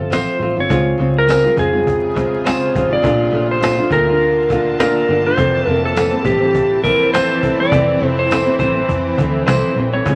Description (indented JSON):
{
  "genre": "indie pop, bedroom pop",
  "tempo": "103 BPM",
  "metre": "4/4",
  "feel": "swing 60% on 16ths",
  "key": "F major",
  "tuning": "A4 = 441 Hz",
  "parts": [
    { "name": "clean lap steel guitar", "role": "melody", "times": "0.0-10.2 s", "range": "G4 to D5", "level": "-19 LUFS", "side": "equal", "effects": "none" },
    { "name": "nylon-string guitar", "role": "accompaniment", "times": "0.0-10.2 s", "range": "F2 to F4", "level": "-22 LUFS", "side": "equal", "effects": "warbly pitch drift" },
    { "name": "vintage muted picked electric bass", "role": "bass", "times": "0.0-10.2 s", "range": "F1 to F2", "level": "-24 LUFS", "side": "equal", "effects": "none" },
    { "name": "cajon", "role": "drums", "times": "0.1-10.2 s", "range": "none", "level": "-25 LUFS", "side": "equal", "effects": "none" },
    { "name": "tambourine", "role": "percussion", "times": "0.1-9.6 s", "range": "none", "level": "-38 LUFS", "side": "equal", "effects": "none" },
    { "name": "shimmering ambient pad", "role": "sustained chords", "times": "1.4-10.2 s", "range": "C3 to A5", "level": "-26 LUFS", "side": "equal", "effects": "chorus, built-in reverb" }
  ],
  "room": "moderate studio reverb, RT60 0.8 s",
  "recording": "vinyl crackle",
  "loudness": "-16 LUFS",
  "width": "mono",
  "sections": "0.7-10.2 A section",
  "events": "none",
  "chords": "0.0 F; 0.7 Dbmaj7; 3.0 Bbmaj7; 5.4 Fmaj7",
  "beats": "0.11 | 0.70 1.28 1.87 2.46 | 3.04 3.62 4.21 4.79 | 5.38 5.96 6.55 7.13 | 7.72 8.30 8.89 9.47 | 10.06"
}